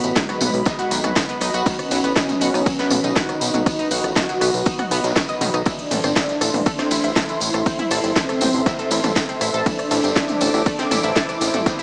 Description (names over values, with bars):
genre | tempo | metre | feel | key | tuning
melodic techno | 120 BPM | 4/4 | straight | unclear | A4 = 440 Hz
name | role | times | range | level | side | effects
wide unison lead | melody | 0.0-11.8 s | G#3 to F#4 | -24 LUFS | equal | sidechain pumping, analog delay
dark analog pad | sustained chords | 0.0-11.8 s | F#4 to D6 | -27 LUFS | equal | chorus, sidechain pumping
fat analog bass | bass | 0.0-11.6 s | G1 to B1 | -23 LUFS | equal | tube saturation, sidechain pumping
techno drum kit | drums | 0.0-11.8 s | hi-hat, ride cymbal, rim click, snare drum, toms | -24 LUFS | equal | overdrive, studio reverb
tambourine | percussion | 0.0-11.8 s | none | -27 LUFS | equal | none
analog pluck | arpeggios | 0.2-11.8 s | D#3 to D#6 | -26 LUFS | equal | chorus, sidechain pumping, analog delay
electronic kick drum | drums | 0.2-11.8 s | none | -22 LUFS | equal | overdrive, studio reverb
raw garage drum kit | drums | 0.2-11.8 s | hi-hat, snare drum | -30 LUFS | equal | sidechain pumping on hats, high-pass filter on hats, studio reverb, high-pass filter on snare, high-pass filter on room
room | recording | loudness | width
light reverb, studio reverb | small speaker sound | -17 LUFS | side -34 dB against mid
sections
0.0-11.8 A section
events
none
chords
0.0 B; 5.7 Am